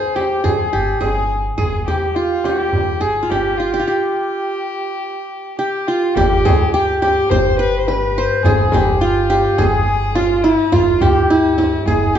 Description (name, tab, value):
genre	Turkish makam ensemble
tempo	105 BPM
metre	4/4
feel	straight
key	G makam hicaz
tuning	A4 = 441 Hz
part	qanun	melody	0.0-12.2 s	E4-40c to C5	-16 LUFS	right 1 dB	none
part	rich violin	second line	0.0-12.2 s	E4-40c to C5	-22 LUFS	left 3 dB	none
part	darbuka	percussion	0.0-12.0 s	none	-24 LUFS	right 2 dB	none
part	frame drum	percussion	0.2-12.0 s	none	-23 LUFS	left 2 dB	none
part	upright bass	bass	0.7-12.2 s	G1 to D2	-23 LUFS	equal	none
part	dark double bass	drone	6.2-12.2 s	G2	-25 LUFS	equal	none
part	riq	percussion	6.2-12.2 s	none	-31 LUFS	left 1 dB	none
room	wet large studio reverb, RT60 1.2 s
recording	band playing live in one room, nothing above 7.7 kHz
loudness	-14 LUFS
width	side -9 dB against mid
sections	0.0-6.2 A section; 6.2-12.2 B section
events	break 3.9-6.2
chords	none